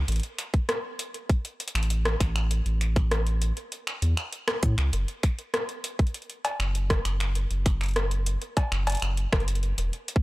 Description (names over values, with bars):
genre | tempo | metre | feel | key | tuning
IDM | 99 BPM | 4/4 | straight | unclear | A4 = 440 Hz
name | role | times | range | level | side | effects
round analog bass | bass | 0.0-9.9 s | E1 to A2 | -25 LUFS | equal | none
booming analog drum machine | drums | 0.1-10.2 s | cowbell, finger snaps, hi-hat, rim click | -30 LUFS | equal | none
electronic kick drum | drums | 0.5-10.2 s | none | -23 LUFS | equal | none
room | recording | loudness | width
little or no reverb | dry, gritty hardware recording, transformer saturation | -25 LUFS | side -20 dB against mid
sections
0.0-10.2 A section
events
none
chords
none